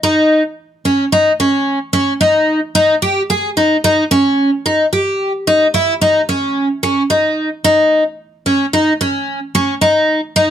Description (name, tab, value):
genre	progressive instrumental, progressive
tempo	110 BPM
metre	7/4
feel	straight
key	unclear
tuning	A4 = 440 Hz
part	picked twelve-string acoustic guitar	solo	0.0-10.5 s	C#4 to G#4	-12 LUFS	equal	none
room	light reverb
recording	close, detailed microphones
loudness	-12 LUFS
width	side -10 dB against mid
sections	0.0-10.5 A section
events	none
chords	none